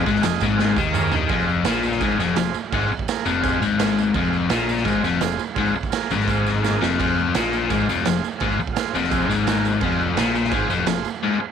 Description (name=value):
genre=garage rock duo or trio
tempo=169 BPM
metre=4/4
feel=straight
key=F minor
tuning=A4 = 441 Hz
part: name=combo organ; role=sustained chords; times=0.0-11.5 s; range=F4 to Eb5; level=-28 LUFS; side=right 12 dB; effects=none
part: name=biting overdriven guitar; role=riff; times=0.0-11.4 s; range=F2 to Eb3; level=-21 LUFS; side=left 6 dB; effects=none
part: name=growling picked electric bass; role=bass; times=0.0-11.0 s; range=F1 to Eb2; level=-28 LUFS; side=right 2 dB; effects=overdrive
part: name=raw garage drum kit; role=drums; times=0.1-11.0 s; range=crash cymbal, kick drum, snare drum, toms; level=-25 LUFS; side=right 7 dB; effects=none
part: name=tambourine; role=percussion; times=0.1-11.2 s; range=none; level=-39 LUFS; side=right 14 dB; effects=none
room=moderate spring reverb, RT60 1.9 s, small room ambience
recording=1960s-style stereo with parts hard left and right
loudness=-18 LUFS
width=side -7 dB against mid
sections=0.0-1.3 A section; 1.3-11.5 B section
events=drum fill 0.6-1.3, 6.6-7.0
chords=0.0 Fm